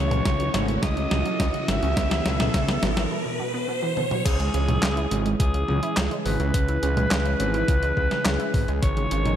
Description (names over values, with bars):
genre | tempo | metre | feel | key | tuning
synthwave | 105 BPM | 4/4 | straight | C# minor | A4 = 442 Hz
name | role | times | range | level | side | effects
raspy alto saxophone | melody | 0.0-9.4 s | G#4 to E5 | -28 LUFS | equal | tape echo
lush unison pad | sustained chords | 0.0-9.4 s | D#3 to A4 | -31 LUFS | equal | chorus, sidechain pumping
analog pluck | arpeggios | 0.0-9.3 s | B2 to E4 | -31 LUFS | right 3 dB | chorus, ping-pong delay
fat analog bass | bass | 0.0-9.4 s | G#1 to C#2 | -25 LUFS | equal | none
riser | sound effects | 0.1-4.3 s | none | -31 LUFS | right 1 dB | none
clean 12-bit digital drum machine | drums | 0.1-9.4 s | crash cymbal, handclaps, hi-hat, snare drum, toms | -27 LUFS | equal | none
electronic kick drum | drums | 0.3-8.9 s | none | -25 LUFS | equal | none
room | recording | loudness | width
moderate concert hall reverb, RT60 2.3 s | none | -21 LUFS | side -10 dB against mid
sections
0.0-4.3 A section; 4.3-9.4 B section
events
drum fill 0.0-3.1, 4.0; filter sweep on synth arpeggio sound 0.0-4.3; riser 0.1-4.3; break 3.1-4.3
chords
0.0 F#m7; 2.0 Aadd9; 4.3 C#m; 8.8 G#sus4